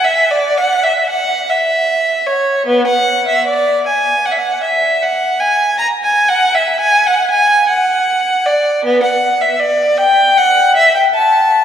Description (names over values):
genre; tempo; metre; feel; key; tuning
classical, baroque-style suite movement for unaccompanied violin; 78 BPM; 4/4; rubato; unclear; A4 = 440 Hz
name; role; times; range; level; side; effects
rich violin; solo; 0.0-11.6 s; B3 to Bb5; -11 LUFS; equal; none
room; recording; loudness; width
wet cathedral reverb, RT60 4.4 s; recorded in a church or concert hall; -11 LUFS; side -9 dB against mid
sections
0.0-11.6 A section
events
none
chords
none